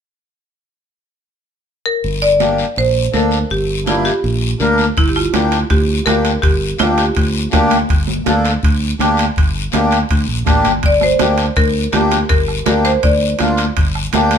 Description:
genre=latin, cumbia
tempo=164 BPM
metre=4/4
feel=straight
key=G minor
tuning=A4 = 440 Hz
part: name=marimba with hard mallets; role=melody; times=1.9-7.5, 10.9-13.5 s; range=E4 to D5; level=-17 LUFS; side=equal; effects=none
part: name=modern bright fingered electric bass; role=bass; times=2.0-14.4 s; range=G1 to D2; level=-18 LUFS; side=equal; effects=none
part: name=congas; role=percussion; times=2.0-14.3 s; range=none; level=-23 LUFS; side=right 2 dB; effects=none
part: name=guiro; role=percussion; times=2.0-14.4 s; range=none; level=-26 LUFS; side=left 5 dB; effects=none
part: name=accordion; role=accompaniment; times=2.4-14.4 s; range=Bb3 to Bb4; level=-17 LUFS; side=left 2 dB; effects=none
part: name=bombo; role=percussion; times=5.0-14.3 s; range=none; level=-17 LUFS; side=equal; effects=none
part: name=timbales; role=percussion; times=5.0-14.4 s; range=none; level=-24 LUFS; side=right 5 dB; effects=none
room=moderate studio reverb, RT60 0.8 s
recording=band playing live in one room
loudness=-12 LUFS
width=side -8 dB against mid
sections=0.6-2.0 A section; 2.0-5.0 B section; 5.0-14.4 C section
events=none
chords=0.6 N.C.; 2.0 Gm

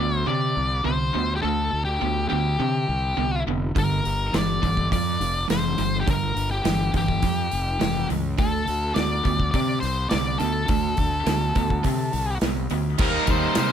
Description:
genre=classic rock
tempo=104 BPM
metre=4/4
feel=straight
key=unclear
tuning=A4 = 439 Hz
part: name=octave-fuzz lead guitar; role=melody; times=0.0-13.7 s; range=G4 to D5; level=-26 LUFS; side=left 2 dB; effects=distortion, slapback echo
part: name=crunchy overdriven guitar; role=riff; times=0.0-13.7 s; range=G2 to Eb4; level=-28 LUFS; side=right 12 dB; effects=none
part: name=distorted electric guitar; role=riff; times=0.0-13.7 s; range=G2 to Eb4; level=-31 LUFS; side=left 13 dB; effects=distortion
part: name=fuzz fingered electric bass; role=bass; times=0.0-13.7 s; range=F1 to C3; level=-26 LUFS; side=equal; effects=overdrive
part: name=big rock drum kit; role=drums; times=3.8-13.7 s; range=crash cymbal, hi-hat, kick drum, ride cymbal, snare drum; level=-26 LUFS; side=equal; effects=none
part: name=reed electric piano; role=accompaniment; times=13.0-13.7 s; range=Eb4 to C5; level=-32 LUFS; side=left 13 dB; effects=medium tremolo
part: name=tambourine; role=percussion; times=13.0-13.7 s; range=none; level=-43 LUFS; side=right 15 dB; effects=none
room=little or no reverb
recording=none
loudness=-21 LUFS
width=side -9 dB against mid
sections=0.0-13.0 A section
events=none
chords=0.0 D5; 3.8 Gm; 8.4 D5; 13.0 Eb6

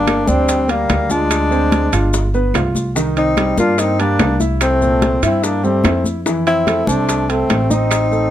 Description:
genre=Afro-Cuban jazz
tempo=146 BPM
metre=4/4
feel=straight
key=G minor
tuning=A4 = 440 Hz
part: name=breathy tenor saxophone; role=melody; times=0.0-8.3 s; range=Bb3 to F4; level=-17 LUFS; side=left 3 dB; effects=none
part: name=bright trombone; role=second line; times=0.0-8.3 s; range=G3 to D4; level=-23 LUFS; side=right 4 dB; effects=none
part: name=upright bass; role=bass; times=0.0-8.3 s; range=G1 to G2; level=-19 LUFS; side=equal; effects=none
part: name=clear baby grand piano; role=accompaniment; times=0.1-8.3 s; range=Bb2 to F5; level=-21 LUFS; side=right 2 dB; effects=none
part: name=bongos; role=percussion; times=0.1-8.1 s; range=none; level=-26 LUFS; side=left 7 dB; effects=none
part: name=claves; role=percussion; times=0.1-8.1 s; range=none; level=-29 LUFS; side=right 11 dB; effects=none
part: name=congas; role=percussion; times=0.1-8.3 s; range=none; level=-23 LUFS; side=left 2 dB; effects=none
part: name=maracas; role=percussion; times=0.1-8.3 s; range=none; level=-28 LUFS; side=left 2 dB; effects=none
part: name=timbales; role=percussion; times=0.1-8.1 s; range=none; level=-25 LUFS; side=right 8 dB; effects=none
room=little or no reverb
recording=close, detailed microphones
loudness=-13 LUFS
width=side -11 dB against mid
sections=0.0-8.3 A section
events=none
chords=0.0 Gm7; 1.3 Dm7b5; 2.1 G7; 3.0 Cm7; 4.6 C6; 6.3 Fmaj7

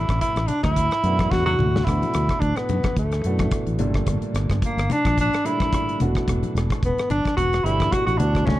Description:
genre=electric jazz fusion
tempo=109 BPM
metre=4/4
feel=swing 55% on 16ths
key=unclear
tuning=A4 = 440 Hz
part: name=warm tenor saxophone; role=melody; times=0.0-8.6 s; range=A3 to F#4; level=-23 LUFS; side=equal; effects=none
part: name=warm baby grand piano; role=accompaniment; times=0.0-8.6 s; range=Bb2 to G4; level=-28 LUFS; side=right 1 dB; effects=none
part: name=fingered electric bass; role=bass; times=0.0-8.6 s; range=E1 to F#2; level=-23 LUFS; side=equal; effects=none
part: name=modern studio drum kit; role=drums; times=0.1-8.6 s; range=hi-hat, kick drum, rim click, snare drum, toms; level=-26 LUFS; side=equal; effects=none
part: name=congas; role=percussion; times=0.5-8.6 s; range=none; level=-30 LUFS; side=left 4 dB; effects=none
room=light reverb, small room ambience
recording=dark, warm production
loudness=-19 LUFS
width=side -15 dB against mid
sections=0.0-8.6 A section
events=drum fill 1.2-1.9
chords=0.0 Asus4; 3.8 Gmadd9; 6.0 Em9

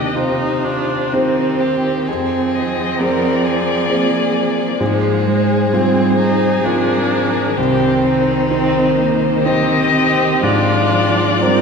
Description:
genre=classical, slow romantic movement for piano quintet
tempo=65 BPM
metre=3/4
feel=uneven beats, rubato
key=unclear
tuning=A4 = 440 Hz
part: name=dark violin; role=melody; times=0.0-11.6 s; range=Bb4 to Eb5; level=-20 LUFS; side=left 6 dB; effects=none
part: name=warm cello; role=second line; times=0.0-11.6 s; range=C3 to Ab3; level=-21 LUFS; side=right 4 dB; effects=none
part: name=warm violin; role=second line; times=0.0-11.6 s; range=Eb4 to Bb4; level=-22 LUFS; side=left 2 dB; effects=none
part: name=rich viola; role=accompaniment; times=0.0-11.6 s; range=Ab3 to Eb4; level=-20 LUFS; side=right 2 dB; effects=none
part: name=warm grand piano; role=accompaniment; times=0.0-11.6 s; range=C2 to C5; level=-19 LUFS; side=right 1 dB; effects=none
room=wet cathedral reverb, RT60 4.8 s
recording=recorded in a church or concert hall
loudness=-13 LUFS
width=side -5 dB against mid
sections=0.0-11.6 A section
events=none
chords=0.0 Cm/Eb; 2.1 Fm; 4.8 Fm/Ab; 7.6 Cm; 10.4 Fm/Ab

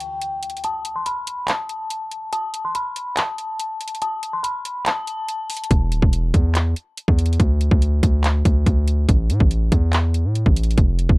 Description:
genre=hip hop, trap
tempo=142 BPM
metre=4/4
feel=half-time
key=unclear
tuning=A4 = 440 Hz
part: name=dark detuned synth bell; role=melody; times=0.0-5.7 s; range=G5 to C6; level=-25 LUFS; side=left 2 dB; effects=chorus, low-pass filter, ping-pong delay
part: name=trap drum kit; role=drums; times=0.0-11.2 s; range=handclaps, hi-hat, kick drum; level=-19 LUFS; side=equal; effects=none
part: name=hard-hitting 808-style bass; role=bass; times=5.7-11.2 s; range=D1 to A2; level=-18 LUFS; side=equal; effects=none
room=little or no reverb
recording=dark, warm production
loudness=-18 LUFS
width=side -24 dB against mid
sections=0.0-11.2 A section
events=break 0.0-5.7; filter sweep on synth bell 0.0-5.7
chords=0.0 N.C.; 9.1 A5

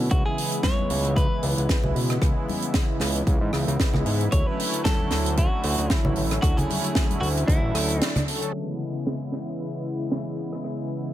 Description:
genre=nu-disco, nu disco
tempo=114 BPM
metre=4/4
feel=swing 55% on 16ths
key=C# phrygian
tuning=A4 = 441 Hz
part: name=warm analog pad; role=accompaniment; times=0.0-11.1 s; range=C#3 to A4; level=-28 LUFS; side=equal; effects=chorus, tremolo, sidechain pumping, dub echo
part: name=fat analog bass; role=bass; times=0.0-8.0 s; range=A1 to B2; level=-25 LUFS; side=equal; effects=none
part: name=direct-recorded clean electric guitar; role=melody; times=0.1-8.2 s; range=E4 to C#5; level=-30 LUFS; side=equal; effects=ping-pong delay
part: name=electronic kick drum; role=drums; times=0.1-7.6 s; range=none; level=-23 LUFS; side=equal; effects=none
part: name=tight funk drum kit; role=drums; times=0.1-10.8 s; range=hi-hat, rim click, snare drum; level=-28 LUFS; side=right 2 dB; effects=none
part: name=congas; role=percussion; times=0.6-8.3 s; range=none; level=-30 LUFS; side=left 1 dB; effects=none
room=small room ambience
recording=low-pass filter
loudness=-22 LUFS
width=side -13 dB against mid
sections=0.0-8.5 A section; 8.5-11.1 B section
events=filter sweep on analog synth pad 0.0-8.5; break 8.0-8.5; band accent 8.0; filter sweep 8.5-11.1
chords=0.1 C#m7; 4.3 Dmaj9; 8.5 C#m7

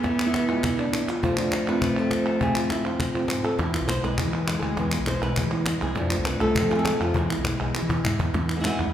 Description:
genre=flamenco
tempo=202 BPM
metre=4/4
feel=straight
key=E phrygian dominant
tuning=A4 = 437 Hz
part: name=flamenco guitar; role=melody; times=0.0-8.9 s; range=E2 to C5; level=-27 LUFS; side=equal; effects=none
part: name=rich cello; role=second line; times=0.0-8.2 s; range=F3 to B3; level=-29 LUFS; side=left 1 dB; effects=none
part: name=flamenco guitar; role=stabs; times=0.0-8.9 s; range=B2 to F4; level=-32 LUFS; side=right 3 dB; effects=none
part: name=cajon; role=percussion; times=0.0-8.8 s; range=none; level=-31 LUFS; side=left 2 dB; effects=none
part: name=palmas hand claps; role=percussion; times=0.0-8.9 s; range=none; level=-30 LUFS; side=right 1 dB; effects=none
part: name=mellow fretless electric bass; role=bass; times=3.6-8.9 s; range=B1 to F3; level=-28 LUFS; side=equal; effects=none
room=wet recital hall reverb, RT60 1.5 s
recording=recorded in a church or concert hall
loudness=-22 LUFS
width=side -10 dB against mid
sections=0.0-8.3 A section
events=drum fill 7.7-8.3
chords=0.0 E; 1.2 F; 3.6 E; 6.0 F; 7.2 E

